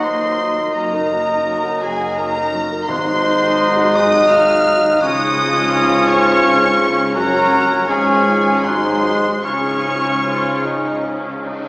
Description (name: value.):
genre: classical.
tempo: 74-86 BPM.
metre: 3/4.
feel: rubato.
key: Db major.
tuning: A4 = 436 Hz.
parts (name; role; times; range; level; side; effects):
warm chamber violin section; melody; 0.0-11.0 s; Ab5 to F6; -26 LUFS; left 1 dB; none.
mellow clarinet; second line; 0.0-11.5 s; Db4 to Eb4; -26 LUFS; equal; none.
mellow cor anglais; second line; 0.0-11.0 s; Ab4 to F5; -21 LUFS; equal; none.
mellow hollow silver concert flute; second line; 0.0-11.5 s; F6 to Bb6; -23 LUFS; left 1 dB; none.
rich studio violin section; second line; 0.0-11.0 s; Ab5 to F6; -24 LUFS; equal; none.
warm studio viola section; accompaniment; 0.0-11.7 s; Bb3 to Bb4; -24 LUFS; equal; none.
dark trombone section; sustained chords; 0.0-11.5 s; Gb2 to Gb3; -26 LUFS; equal; none.
mellow French horn section; sustained chords; 0.0-11.5 s; Gb3 to F4; -23 LUFS; equal; none.
concert harp; arpeggios; 0.0-11.7 s; Gb2 to Bb5; -28 LUFS; equal; none.
mellow trumpet section; stabs; 0.0-11.5 s; Ab4 to Eb5; -19 LUFS; equal; none.
warm studio cello section; bass; 0.0-11.6 s; Eb2 to Db3; -27 LUFS; equal; none.
warm studio double bass section; bass; 0.0-11.6 s; Gb1 to Eb2; -31 LUFS; right 1 dB; none.
timpani; percussion; 2.9-3.9 s; Ab2; -31 LUFS; equal; none.
room: wet scoring stage reverb, RT60 1.8 s.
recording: heard from further back in the room, small speaker sound.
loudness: -13 LUFS.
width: side -26 dB against mid.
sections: 0.0-11.7 A section.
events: none.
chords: 0.0 Ebm; 0.8 Ebm/Gb; 2.9 Ab7; 5.0 Db; 7.2 Gb; 7.9 Db/Ab; 8.7 Ab7; 9.4 Db.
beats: 0.05 | 0.76 1.46 2.18 | 2.88 3.59 4.31 | 5.02 5.73 6.44 | 7.15 7.89 8.65 | 9.44 10.25 11.04.